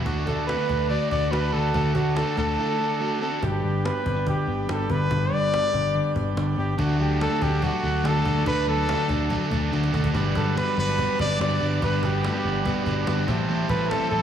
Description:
jangly indie pop; 143 BPM; 4/4; straight; A4 = 443 Hz
clear trumpet; melody; 0.0-14.2 s; F#4 to D5; -26 LUFS; equal; slapback echo
combo organ; accompaniment; 0.0-14.2 s; G3 to F#5; -32 LUFS; right 5 dB
crunchy overdriven guitar; accompaniment; 0.0-3.4, 6.8-14.2 s; A2 to B4; -31 LUFS; right 4 dB; slapback echo
mellow electric guitar; arpeggios; 0.0-14.2 s; G2 to F#4; -28 LUFS; left 3 dB; digital delay
vintage muted picked electric bass; bass; 0.0-14.2 s; G1 to D2; -27 LUFS; equal
cajon; drums; 0.1-14.2 s; -33 LUFS; left 1 dB
moderate lush hall reverb, RT60 1.7 s; big arena sound, studio ambience; -21 LUFS; side -9 dB against mid
0.0-3.4 A section; 3.4-10.1 B section; 10.1-14.2 C section
break 2.6-3.4; drum fill 9.7-10.1
0.1 D; 3.4 G; 6.8 D; 10.1 Gmaj7; 13.3 Am7

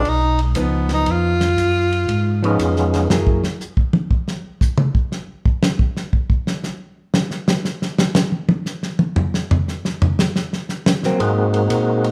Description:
soul jazz organ trio; 118 BPM; 4/4; swing 67% on 8ths; A4 = 440 Hz
clear tenor saxophone; melody; 0.0-2.6 s; Ab3 to F4; -22 LUFS; equal
percussive tonewheel organ; melody; 0.0-3.1, 11.2-12.1 s; Ab3 to Gb4; -22 LUFS; equal; slow rotary speaker, overdrive, chorus vibrato
mellow tonewheel organ; bass; 0.0-3.4, 11.2-12.1 s; Cb2 to Bb2; -22 LUFS; equal; slow rotary speaker
warm soul drum kit; drums; 0.1-12.1 s; hi-hat, kick drum, ride cymbal, snare drum, toms; -21 LUFS; equal
hollow-body jazz guitar; accompaniment; 0.6-3.4, 11.0-11.2 s; F3 to Ab4; -24 LUFS; equal
wet large studio reverb, RT60 1.0 s; band playing live in one room; -19 LUFS; mono
0.0-12.1 A section
tenor saxophone solo 0.0-12.1; drum solo 3.1-11.2
0.0 Db9; 3.1 Gb9; 9.2 Gb; 11.2 Ab9

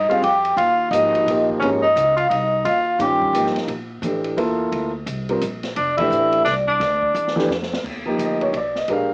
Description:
modal jazz; 173 BPM; 3/4; swing 63% on 8ths; A4 = 441 Hz
vibraphone with medium mallets; melody; 0.0-3.5, 5.8-7.5 s; Db5 to G5; -19 LUFS; equal; cassette tape
warm tenor saxophone; second line; 0.0-3.5, 5.8-7.5 s; Db4 to G4; -21 LUFS; equal
upright bass; bass; 0.0-9.1 s; F1 to Bb2; -30 LUFS; equal; tube saturation
dark baby grand piano; accompaniment; 0.1-9.1 s; Eb3 to F5; -21 LUFS; equal
open jazz drum kit; drums; 0.1-9.0 s; crash cymbal, hi-hat, kick drum, ride cymbal, snare drum; -31 LUFS; equal; cassette tape
light reverb; home recording on cassette, small speaker sound; -17 LUFS; side -33 dB against mid
0.0-7.8 A section; 7.8-9.1 B section
band accent 5.9; drum fill 7.2-7.8
0.0 Abmaj9; 3.7 Bbmaj9; 7.8 Ebmaj9

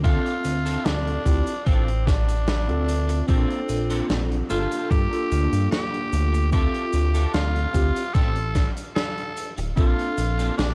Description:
vaporwave; 74 BPM; 4/4; straight; D minor; A4 = 440 Hz
raspy tenor saxophone; melody; 0.0-10.7 s; C4 to A4; -32 LUFS; equal; tape echo
tine electric piano; accompaniment; 0.0-10.7 s; Bb3 to E5; -30 LUFS; equal; medium tremolo, lush chorus, vintage 12-bit sampler grit
electric guitar at the edge of break-up; riff; 0.0-10.7 s; Bb3 to A4; -37 LUFS; equal; ensemble chorus, analog delay
chorused synth bass; bass; 0.0-10.7 s; D1 to G2; -26 LUFS; equal
electronic kick drum; drums; 0.0-9.9 s; -24 LUFS; equal
huge arena drum kit; drums; 0.0-10.7 s; cabasa, hi-hat, snare drum; -33 LUFS; equal
little or no reverb; cassette tape; -23 LUFS; mono
0.0-10.7 A section
0.0 Dm7; 3.3 Bbmaj9; 4.5 Gm9; 6.5 Dm7; 9.8 Bbmaj9

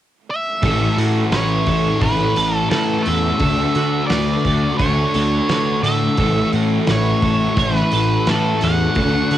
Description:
rock, shoegaze and dream pop; 86 BPM; 4/4; straight; A major; A4 = 438 Hz
octave-fuzz lead guitar; melody; 0.3-9.4 s; A4 to F#5; -22 LUFS; right 1 dB; distortion, cassette tape, tape echo
chorused pulse-width pad; sustained chords; 0.6-9.4 s; D4 to C#6; -30 LUFS; right 2 dB
crunchy overdriven guitar; riff; 0.6-9.4 s; A2 to F#4; -26 LUFS; right 12 dB; reverse reverb
thick fuzz guitar; riff; 0.6-9.4 s; A2 to D4; -20 LUFS; left 5 dB; distortion, lush chorus
fuzz picked electric bass; bass; 0.6-9.4 s; A1 to D3; -21 LUFS; equal; overdrive
loose indie drum kit; drums; 0.6-9.4 s; hi-hat, kick drum, snare drum; -25 LUFS; right 1 dB; cassette tape
twelve-string electric guitar; arpeggios; 0.7-9.4 s; F#4 to C#5; -26 LUFS; right 6 dB; ensemble chorus, tape echo
light reverb; home recording on cassette; -15 LUFS; side -12 dB against mid
0.7-9.4 A section
0.0 N.C.; 0.7 A6; 3.4 Dmaj7; 6.2 A6

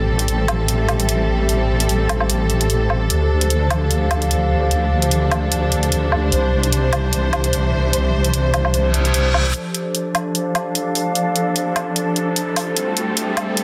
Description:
heavy wobble dubstep; 149 BPM; 4/4; swing 55% on 16ths, half-time; D minor; A4 = 440 Hz
rich symphonic string section; sustained chords; 0.0-13.6 s; E3 to C5; -25 LUFS; equal; low-pass filter
wobble bass; bass; 0.0-9.5 s; A1 to D2; -21 LUFS; equal; chorus, overdrive
warbly tape-like pad; texture; 0.0-13.6 s; A3 to F5; -27 LUFS; equal; chorus, built-in reverb
electronic hi-hat and woodblock; drums; 0.2-13.6 s; -24 LUFS; equal; high-pass filter on hats, high-pass filter on snare, high-pass filter on perc, high-pass filter on cymbals
reverse cymbal and riser; sound effects; 8.8-13.6 s; -30 LUFS; equal
light reverb; dense, heavily limited modern master; -19 LUFS; mono
0.0-9.5 A section; 9.5-13.6 B section
reverse cymbal 8.9-9.5; build-up 9.5-13.6; riser 9.5-13.6; filter sweep on string section 9.5-13.6
0.0 Am7; 3.1 Dm; 6.3 Cadd9; 9.5 Dm; 12.8 Am7

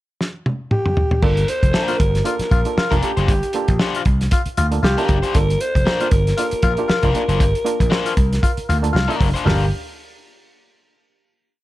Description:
funk; 117 BPM; 4/4; swing 56% on 16ths; G minor; A4 = 441 Hz
warm soul drum kit; drums; 0.2-9.6 s; crash cymbal, hi-hat, kick drum, snare drum, toms; -19 LUFS; equal
breathy alto saxophone; melody; 0.7-9.7 s; G4 to C5; -23 LUFS; equal; plate reverb
muted clav; stabs; 1.2-9.7 s; Bb3 to C5; -27 LUFS; right 6 dB; plate reverb
vintage slap bass; bass; 1.2-9.7 s; F1 to D2; -19 LUFS; equal
crunchy overdriven guitar; accompaniment; 1.7-9.6 s; D4 to C5; -26 LUFS; left 6 dB; plate reverb
raspy tenor saxophone; second line; 1.9-9.6 s; F4; -26 LUFS; left 5 dB; plate reverb
light reverb, studio reverb; -16 LUFS; side -16 dB against mid
0.0-1.2 pickup bar; 1.2-9.5 groove; 9.5-11.5 final chord
drum fill 0.2-1.2
0.0 N.C.; 1.2 Gm7

